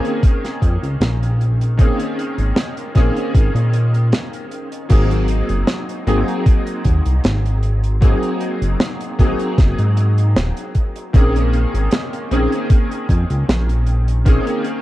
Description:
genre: vaporwave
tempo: 77 BPM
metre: 4/4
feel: straight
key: unclear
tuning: A4 = 440 Hz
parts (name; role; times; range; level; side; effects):
- clear electric grand piano; accompaniment; 0.0-14.8 s; Eb3 to Ab4; -22 LUFS; equal; ensemble chorus, vintage 12-bit sampler grit, analog delay
- modern studio drum kit; drums; 0.0-14.8 s; crash cymbal, hi-hat, snare drum; -23 LUFS; right 1 dB; none
- electronic kick drum; drums; 0.2-14.4 s; none; -13 LUFS; equal; overdrive
- chorused synth bass; bass; 0.6-14.4 s; Eb1 to Bb2; -17 LUFS; equal; none
room: little or no reverb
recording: dark, warm production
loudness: -14 LUFS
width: side -16 dB against mid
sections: 0.0-4.9 A section; 4.9-14.8 B section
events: break 4.1-4.9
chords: 0.0 Bbm11; 4.9 Ab9; 11.1 Bbm11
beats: 0.23 1.01 | 1.79 2.57 3.35 4.13 | 4.91 5.69 6.47 7.25 | 8.03 8.80 9.59 10.36 | 11.14 11.92 12.70 13.48 | 14.26

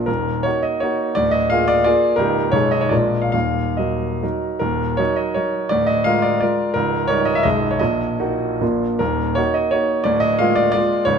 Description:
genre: classical, romantic triple-time dance for piano with dotted rhythms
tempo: 129-187 BPM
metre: 3/4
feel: rubato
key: Eb minor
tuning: A4 = 442 Hz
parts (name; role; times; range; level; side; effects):
- clear grand piano; solo; 0.0-11.2 s; Cb1 to F5; -16 LUFS; equal; none
room: moderate scoring stage reverb, RT60 1.9 s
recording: close, detailed microphones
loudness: -16 LUFS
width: side -6 dB against mid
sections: 0.0-4.6 A section; 4.6-11.2 A section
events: none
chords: 0.1 Ebm; 1.2 Bb7/D; 2.2 Eb7/Db; 2.5 Abm/Cb; 2.9 Bb7; 3.3 Ebm; 5.7 Bb7/D; 6.8 Eb7/Db; 7.5 Abm/Cb; 7.8 Ebm/Bb; 8.6 Bb; 9.0 Ebm; 10.1 Bb7/D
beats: | 0.08 0.45 0.82 | 1.16 1.51 1.86 | 2.19 2.54 2.92 | 3.34 3.79 4.23 | 4.62 5.00 5.37 | 5.72 6.07 6.42 | 6.76 7.10 7.45 | 7.81 8.20 8.61 | 9.01 9.38 9.74 | 10.07 10.41 10.75 | 11.08

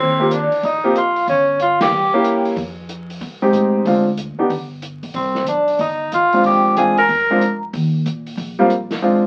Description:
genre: jazz, small-group swing and bop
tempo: 186 BPM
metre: 4/4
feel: swing 64% on 8ths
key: Eb major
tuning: A4 = 440 Hz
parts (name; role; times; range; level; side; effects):
- vibraphone with soft mallets; melody; 0.0-2.4, 5.2-7.6 s; C5 to Bb5; -22 LUFS; equal; none
- warm tenor saxophone; second line; 0.0-2.4, 5.2-7.6 s; C4 to Bb4; -20 LUFS; equal; none
- upright bass; bass; 0.0-9.0 s; F1 to Bb2; -29 LUFS; equal; none
- warm concert grand piano; accompaniment; 0.2-9.2 s; G3 to G4; -18 LUFS; equal; none
- open jazz drum kit; drums; 0.3-9.0 s; hi-hat, kick drum, ride cymbal, snare drum; -32 LUFS; equal; none
room: moderate studio reverb, RT60 0.5 s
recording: very old 78 rpm record, vinyl crackle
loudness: -17 LUFS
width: mono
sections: 0.0-9.3 A section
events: band accent 1.8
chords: 0.0 Eb69; 1.3 Fsus2/G; 1.9 C7b9; 2.6 Fm9; 3.9 Dm7b5; 4.5 G; 5.2 Cmadd9; 6.4 Bb9; 7.7 Eb5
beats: 0.31 0.63 0.95 | 1.28 1.60 1.92 2.25 | 2.57 2.89 3.21 3.54 | 3.86 4.18 4.50 4.83 | 5.15 5.47 5.80 6.12 | 6.44 6.76 7.09 7.41 | 7.73 8.05 8.38 8.70 | 9.02

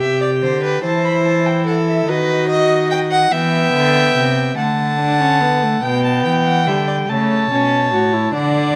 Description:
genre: classical, baroque-style fugue for string quartet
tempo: 48 BPM (dotted quarters)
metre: 6/8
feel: straight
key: E minor, D major from 4.6 s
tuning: A4 = 440 Hz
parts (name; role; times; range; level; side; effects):
- dark violin; melody; 0.0-8.8 s; D#5 to B5; -23 LUFS; equal; none
- warm violin; second line; 0.0-8.8 s; A4 to A5; -22 LUFS; equal; none
- warm viola; accompaniment; 0.0-8.8 s; G3 to G4; -21 LUFS; equal; none
- rich cello; bass; 0.0-8.8 s; A2 to E3; -23 LUFS; equal; none
room: light reverb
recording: close, detailed microphones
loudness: -16 LUFS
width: mono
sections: 0.0-4.6 A section; 4.6-8.8 B section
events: none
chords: 0.0 Em; 0.8 Am/E; 2.1 B/D#; 3.3 Em; 4.6 D; 5.8 G/B; 7.1 A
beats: 0.84 | 2.08 3.32 | 4.57 5.83 | 7.09 8.34

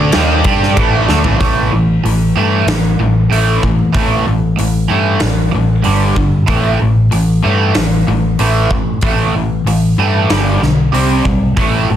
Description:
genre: hard rock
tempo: 94 BPM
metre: 4/4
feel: straight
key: A minor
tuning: A4 = 441 Hz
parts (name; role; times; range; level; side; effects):
- overdriven tonewheel organ; sustained chords; 0.0-1.4 s; A4 to D5; -27 LUFS; equal; none
- overdriven electric guitar; riff; 0.0-12.0 s; G2 to G4; -16 LUFS; left 5 dB; none
- overdriven semi-hollow guitar; riff; 0.0-12.0 s; G2 to G4; -16 LUFS; right 8 dB; phaser
- picked electric bass; bass; 0.0-12.0 s; G1 to A2; -16 LUFS; equal; none
- huge arena drum kit; drums; 0.1-11.7 s; hi-hat, kick drum, ride cymbal, snare drum, toms; -18 LUFS; equal; none
room: light reverb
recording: dense, heavily limited modern master, vinyl crackle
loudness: -10 LUFS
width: side -10 dB against mid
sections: 0.0-1.4 A section; 1.4-12.0 B section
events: drum fill 1.1-1.4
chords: 0.0 Am; 1.4 A5; 5.9 G5; 6.5 A5; 10.3 G5; 10.9 C5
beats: 0.14 0.77 | 1.41 2.04 2.68 3.31 | 3.95 4.58 5.22 5.85 | 6.49 7.12 7.76 8.40 | 9.03 9.67 10.30 10.94 | 11.57

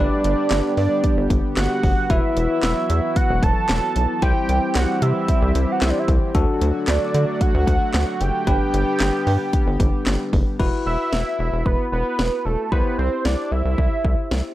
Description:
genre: synth-pop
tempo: 113 BPM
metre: 4/4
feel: straight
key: G major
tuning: A4 = 440 Hz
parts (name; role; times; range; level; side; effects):
- fat analog lead; melody; 0.0-14.5 s; A4 to A5; -24 LUFS; right 3 dB; chorus, phaser
- bell-like tine electric piano; accompaniment; 0.0-14.5 s; D4 to C5; -27 LUFS; left 4 dB; none
- chorused pulse-width pad; sustained chords; 0.0-10.6 s; D3 to G4; -27 LUFS; equal; none
- rubbery square bass; bass; 0.0-14.4 s; E1 to D3; -21 LUFS; equal; none
- house drum kit; drums; 0.2-14.4 s; crash cymbal, handclaps, hi-hat, kick drum, snare drum; -22 LUFS; equal; none
room: light reverb, digital ambience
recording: dark, warm production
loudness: -18 LUFS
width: side -15 dB against mid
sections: 0.0-10.6 A section; 10.6-14.5 B section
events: none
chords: 0.0 G; 2.1 Esus2; 4.2 C; 6.3 D; 8.5 G; 10.6 Esus2; 12.7 C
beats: 0.51 1.04 1.57 | 2.10 2.63 3.16 3.69 | 4.22 4.75 5.29 5.82 | 6.35 6.88 7.41 7.94 | 8.47 9.00 9.53 10.06 | 10.60 11.13 11.66 12.19 | 12.72 13.25 13.78 14.31

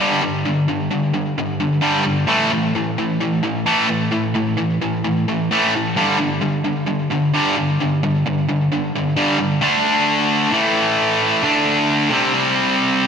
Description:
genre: rock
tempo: 131 BPM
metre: 4/4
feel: straight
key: unclear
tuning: A4 = 440 Hz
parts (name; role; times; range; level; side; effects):
- distorted electric guitar; solo; 0.0-13.1 s; G2 to D4; -16 LUFS; equal; overdrive, ping-pong delay
room: wet lush hall reverb, RT60 2.1 s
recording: bright 1980s-style digital production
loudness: -16 LUFS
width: side -7 dB against mid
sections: 0.0-9.6 A section; 9.6-13.1 B section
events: none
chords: 0.0 G5; 2.3 A5; 6.0 G5; 9.6 D5; 10.5 A5; 11.4 D5; 12.1 C5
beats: 0.01 | 0.47 0.92 1.38 1.83 | 2.29 2.75 3.21 3.67 | 4.12 4.58 5.04 5.50 | 5.96 6.41 6.87 7.33 | 7.79 8.24 8.70 9.16 | 9.61 10.07 10.53 10.98 | 11.44 11.89 12.35 12.80

